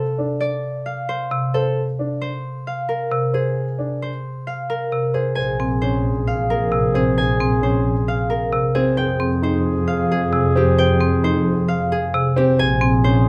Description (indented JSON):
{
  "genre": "classical, minimalist pattern music",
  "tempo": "133 BPM",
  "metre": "4/4",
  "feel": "straight",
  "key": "unclear",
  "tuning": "A4 = 440 Hz",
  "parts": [
    { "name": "concert harp", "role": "melody", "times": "0.0-13.3 s", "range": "G4 to Ab5", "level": "-26 LUFS", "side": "equal", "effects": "none" },
    { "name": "dark baby grand piano", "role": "arpeggios", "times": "0.0-13.3 s", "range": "C4 to C5", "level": "-26 LUFS", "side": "equal", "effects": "none" },
    { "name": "marimba with hard mallets", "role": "accompaniment", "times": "1.3-13.1 s", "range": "C3 to C4", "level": "-26 LUFS", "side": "equal", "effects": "none" },
    { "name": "mellow clarinet", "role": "second line", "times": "5.4-13.3 s", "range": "Ab4", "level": "-28 LUFS", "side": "equal", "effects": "none" },
    { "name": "warm symphonic double bass section", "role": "bass", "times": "5.4-13.3 s", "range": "Bb1 to F2", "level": "-23 LUFS", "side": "equal", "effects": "none" }
  ],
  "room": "little or no reverb",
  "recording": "close, detailed microphones",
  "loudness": "-20 LUFS",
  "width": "mono",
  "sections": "0.0-5.4 A section; 5.4-13.3 B section",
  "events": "none",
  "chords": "0.0 F7; 5.4 Bbm7; 9.0 Fm7; 12.6 Bbm7"
}